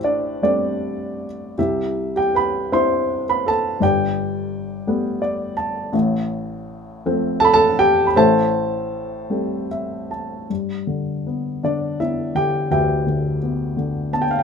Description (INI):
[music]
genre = classical, lyrical solo piano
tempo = 50-58 BPM (dotted quarters)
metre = 6/8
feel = rubato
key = unclear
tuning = A4 = 440 Hz
[part]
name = dark baby grand piano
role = solo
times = 0.0-14.4 s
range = G1 to C6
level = -18 LUFS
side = equal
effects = none
[sound]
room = light reverb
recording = minimal, uncompressed stereo recording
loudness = -18 LUFS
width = side -6 dB against mid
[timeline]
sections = 0.0-10.5 A section; 10.5-14.4 B section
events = grand piano fill 4.9-5.9, 9.3-10.5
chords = 0.0 Am7; 1.6 Cadd9; 3.8 Gadd9; 5.9 F/A; 8.2 Am7; 10.5 G6